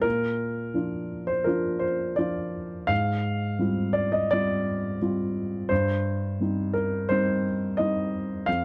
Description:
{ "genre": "neoclassical minimalist piano", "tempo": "86 BPM", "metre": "4/4", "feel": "rubato", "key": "unclear", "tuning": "A4 = 440 Hz", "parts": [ { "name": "dark baby grand piano", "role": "solo", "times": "0.0-8.6 s", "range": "F2 to F5", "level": "-27 LUFS", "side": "equal", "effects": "none" } ], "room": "light reverb", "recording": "none", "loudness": "-27 LUFS", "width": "mono", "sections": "0.0-8.6 A section", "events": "none", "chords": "0.0 Bb; 2.9 Fmadd9/Ab; 5.7 Cm/G", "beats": "| 0.05 0.76 1.48 2.19 | 2.90 3.61 4.31 5.00 | 5.71 6.40 7.10 7.78 | 8.47" }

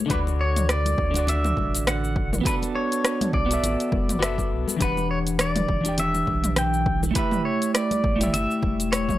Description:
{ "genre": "sunset chillout", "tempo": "102 BPM", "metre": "4/4", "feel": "swing 56% on 16ths", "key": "E dorian", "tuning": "A4 = 440 Hz", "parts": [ { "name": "electric guitar at the edge of break-up", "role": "accompaniment", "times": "0.0-9.2 s", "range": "D3 to G5", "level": "-26 LUFS", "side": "moving between left 6 dB and right 6 dB", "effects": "auto-pan, analog delay" }, { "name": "pedal steel guitar", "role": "melody", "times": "0.1-9.2 s", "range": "B4 to G5", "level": "-27 LUFS", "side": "equal", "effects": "tape echo" }, { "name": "warm sub bass", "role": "bass", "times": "0.1-9.2 s", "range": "E1 to D2", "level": "-27 LUFS", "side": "equal", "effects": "tube saturation" }, { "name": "deep house drum kit", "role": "drums", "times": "0.1-9.2 s", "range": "cabasa, hi-hat, rim click, toms", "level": "-27 LUFS", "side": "equal", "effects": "overdrive" }, { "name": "electronic kick drum", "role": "drums", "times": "0.1-9.2 s", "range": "none", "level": "-28 LUFS", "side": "equal", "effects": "overdrive" }, { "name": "congas", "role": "percussion", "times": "0.3-9.2 s", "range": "none", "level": "-34 LUFS", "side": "left 3 dB", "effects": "none" } ], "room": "digital ambience", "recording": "dry, gritty hardware recording", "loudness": "-21 LUFS", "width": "side -14 dB against mid", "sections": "0.0-9.2 A section", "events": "none", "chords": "0.1 D; 2.5 Bm7; 4.8 Em9; 7.2 A5", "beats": "| 0.10 0.69 1.27 1.86 | 2.45 3.04 3.63 4.21 | 4.80 5.39 5.98 6.57 | 7.16 7.75 8.33 8.92" }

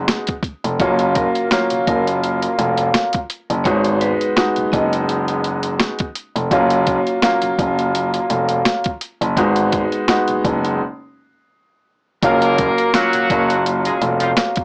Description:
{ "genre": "hip hop, boom-bap hip-hop", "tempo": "84 BPM", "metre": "4/4", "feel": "swing 55% on 16ths", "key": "F# major", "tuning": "A4 = 441 Hz", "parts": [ { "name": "clear upright piano", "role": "accompaniment", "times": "0.0-14.6 s", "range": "F#3 to F#4", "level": "-21 LUFS", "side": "equal", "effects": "cassette tape, high-pass filter, low-pass filter" }, { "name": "dark baby grand piano", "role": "bass", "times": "0.0-14.3 s", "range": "E#1 to G#1", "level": "-23 LUFS", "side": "equal", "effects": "none" }, { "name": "boom bap sampler-style drum kit", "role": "drums", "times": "0.1-14.6 s", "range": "hi-hat, kick drum, snare drum", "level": "-23 LUFS", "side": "equal", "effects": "none" }, { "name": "vibraphone with hard mallets", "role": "melody", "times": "0.8-4.9, 12.2-13.5 s", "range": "A#4 to D#5", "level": "-26 LUFS", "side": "equal", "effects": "high-pass filter, low-pass filter, analog delay" }, { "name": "warm horn section", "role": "stabs", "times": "12.2-14.3 s", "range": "E#3 to A#4", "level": "-22 LUFS", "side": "equal", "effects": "high-pass filter, low-pass filter, analog delay" } ], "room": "little or no reverb", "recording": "dry, gritty hardware recording, cassette tape, small speaker sound", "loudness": "-18 LUFS", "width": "mono", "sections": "0.8-14.6 A section", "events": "break 10.8-12.2", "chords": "0.0 G#m7; 0.8 F#maj7; 3.7 G#m7; 6.5 F#maj7; 9.4 G#m7; 12.2 F#maj7", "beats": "0.08 | 0.80 1.51 2.22 2.94 | 3.65 4.37 5.08 5.80 | 6.51 7.22 7.94 8.65 | 9.37 10.08 10.80 11.51 | 12.22 12.94 13.65 14.37" }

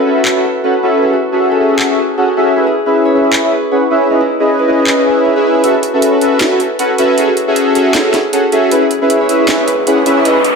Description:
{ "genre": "future bass", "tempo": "156 BPM", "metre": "4/4", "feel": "swing 56% on 16ths, half-time", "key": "F# dorian", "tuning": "A4 = 440 Hz", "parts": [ { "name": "Celtic harp", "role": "arpeggios", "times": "0.0-10.6 s", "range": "D#4 to C#5", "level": "-18 LUFS", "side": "right 1 dB", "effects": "ping-pong delay" }, { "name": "soft supersaw", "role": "riff", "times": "0.0-10.4 s", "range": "C#4 to F#5", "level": "-11 LUFS", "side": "equal", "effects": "low-pass filter, ping-pong delay" }, { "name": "trap drum kit", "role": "drums", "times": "0.3-10.5 s", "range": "handclaps, hi-hat, snare drum", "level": "-17 LUFS", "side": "equal", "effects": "none" }, { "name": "riser", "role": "sound effects", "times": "9.1-10.6 s", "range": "none", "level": "-19 LUFS", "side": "equal", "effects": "none" } ], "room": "moderate digital room reverb, RT60 1.1 s, digital ambience", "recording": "none", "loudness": "-10 LUFS", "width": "side -4 dB against mid", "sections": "0.0-10.6 A section", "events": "filter sweep on supersaw synth 0.0-10.6; riser 9.1-10.6", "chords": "0.0 A69; 1.0 F#m9; 4.1 C#m9; 5.6 A69", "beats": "0.25 0.64 | 1.02 1.41 1.79 2.18 | 2.56 2.94 3.33 3.71 | 4.10 4.48 4.87 5.25 | 5.64 6.02 6.41 6.79 | 7.18 7.56 7.95 8.33 | 8.71 9.10 9.48 9.87 | 10.25" }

